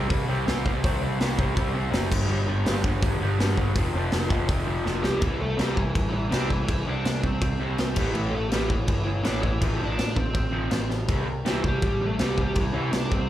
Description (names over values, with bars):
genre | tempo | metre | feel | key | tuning
punk rock | 164 BPM | 4/4 | straight | C major | A4 = 441 Hz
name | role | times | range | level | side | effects
raw garage guitar | riff | 0.0-13.3 s | F2 to C4 | -28 LUFS | equal | overdrive, slapback echo
picked electric bass | bass | 0.0-13.3 s | F1 to C3 | -28 LUFS | equal | none
big rock drum kit | drums | 0.1-13.2 s | crash cymbal, hi-hat, kick drum, snare drum | -27 LUFS | equal | none
smooth overdriven lead guitar | melody | 5.0-13.3 s | E3 to D5 | -30 LUFS | right 1 dB | none
room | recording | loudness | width
light reverb | live gig heard through the venue's PA, club reverb | -22 LUFS | side -13 dB against mid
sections
0.0-5.2 A section; 5.2-13.3 B section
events
drum fill 4.9-5.2, 10.9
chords
0.0 C5; 2.1 G5; 3.8 F5; 5.2 C; 8.0 A5; 9.6 F/A; 11.1 C